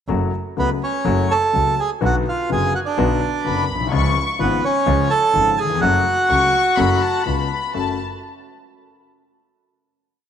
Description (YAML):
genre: tango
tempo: 126 BPM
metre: 4/4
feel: rubato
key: F# harmonic minor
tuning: A4 = 440 Hz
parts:
  - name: warm concert grand piano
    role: accompaniment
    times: 0.1-8.0 s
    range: F#1 to F#4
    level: -22 LUFS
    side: left 6 dB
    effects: none
  - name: clear double bass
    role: bass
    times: 0.1-8.0 s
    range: F#1 to C#2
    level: -24 LUFS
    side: right 2 dB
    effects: none
  - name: bandoneon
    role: melody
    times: 0.6-7.2 s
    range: B3 to A5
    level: -18 LUFS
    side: right 2 dB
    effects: none
  - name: warm studio violin section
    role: second line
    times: 3.4-8.0 s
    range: A5 to C#6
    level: -24 LUFS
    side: left 6 dB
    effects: tape echo
room: moderate plate reverb, RT60 2.4 s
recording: 1960s-style stereo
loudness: -16 LUFS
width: side -8 dB against mid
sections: 0.1-7.8 A section; 7.8-9.7 final chord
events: none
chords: 0.1 F#m; 2.0 Bm; 3.9 C#; 5.8 F#m; 7.3 C#7; 7.8 F#m